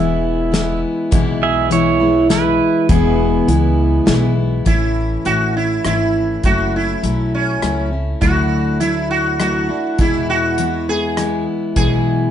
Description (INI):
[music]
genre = honky-tonk and classic country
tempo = 102 BPM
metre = 3/4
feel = straight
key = unclear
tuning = A4 = 440 Hz
[part]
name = pedal steel guitar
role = second line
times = 0.0-4.3 s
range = B3 to E5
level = -19 LUFS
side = right 8 dB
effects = none
[part]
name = picked steel-string acoustic guitar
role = accompaniment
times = 0.0-12.3 s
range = E2 to E4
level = -18 LUFS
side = left 3 dB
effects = none
[part]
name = upright bass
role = bass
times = 0.0-12.3 s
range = E1 to E2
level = -20 LUFS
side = equal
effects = none
[part]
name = unplugged drum kit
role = drums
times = 0.5-11.9 s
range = hi-hat, kick drum, rim click, snare drum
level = -18 LUFS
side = equal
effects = none
[part]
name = sitar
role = melody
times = 4.7-12.3 s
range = C#4 to G#4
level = -20 LUFS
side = right 3 dB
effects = none
[sound]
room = light reverb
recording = dark, warm production, nothing above 10.9 kHz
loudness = -14 LUFS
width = side -10 dB against mid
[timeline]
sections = 0.0-4.7 A section; 4.7-12.3 B section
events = pedal steel guitar solo 0.0-4.7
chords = 0.0 E; 4.7 A; 6.4 F#m7; 8.2 Dadd9; 10.0 E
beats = 0.54 | 1.13 1.72 2.31 | 2.90 3.49 4.08 | 4.67 5.26 5.85 | 6.44 7.04 7.63 | 8.22 8.81 9.40 | 9.99 10.59 11.18 | 11.77